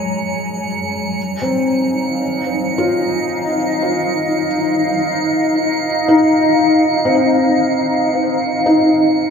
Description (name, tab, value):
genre	ambient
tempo	free time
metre	none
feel	none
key	unclear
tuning	A4 = 443 Hz
part	granular cloud pad	sustained chords	0.0-9.3 s	Gb3 to Bb5	-17 LUFS	equal	built-in reverb
part	felt-muted upright piano	arpeggios	0.0-9.3 s	Ab3 to F4	-17 LUFS	left 1 dB	tape echo
part	drifting glass-harmonics texture	texture	0.0-9.3 s	Db7	-26 LUFS	right 9 dB	chorus, built-in reverb
room	wet plate reverb, RT60 2.8 s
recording	echo-heavy mix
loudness	-14 LUFS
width	side -6 dB against mid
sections	0.0-9.3 A section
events	none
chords	0.0 Gbadd9; 1.2 Ebmadd9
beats	free time